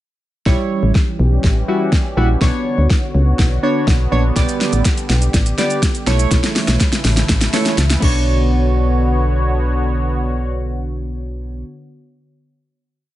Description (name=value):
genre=dance-pop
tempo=123 BPM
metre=4/4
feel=straight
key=B minor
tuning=A4 = 440 Hz
part: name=warm analog keys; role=accompaniment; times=0.5-11.7 s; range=G3 to D5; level=-21 LUFS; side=right 2 dB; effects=chorus, sidechain pumping
part: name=sweeping resonant pad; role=sustained chords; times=0.5-11.6 s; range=C#3 to C#5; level=-24 LUFS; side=equal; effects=chorus, sidechain pumping
part: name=solid FM bass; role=bass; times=0.5-11.6 s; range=A1 to D2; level=-16 LUFS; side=equal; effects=sidechain pumping
part: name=smooth R&B drum kit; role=drums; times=0.5-8.1 s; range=crash cymbal, hi-hat, kick drum, shaker, snare drum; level=-16 LUFS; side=equal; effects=none
room=digital ambience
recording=nothing above 11.0 kHz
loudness=-14 LUFS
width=side -14 dB against mid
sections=0.5-8.3 build; 8.3-12.2 final hit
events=build-up 0.5-8.3; drum fill 0.5-8.3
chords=0.5 C#dim; 2.4 Bmadd9; 4.4 G; 6.1 A/B; 8.0 Bmadd9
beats=| 0.46 0.95 1.44 1.93 | 2.41 2.90 3.39 3.88 | 4.37 4.85 5.34 5.83 | 6.32 6.80 7.29 7.78 | 8.27 8.76 9.24 9.73 | 10.22 10.71 11.20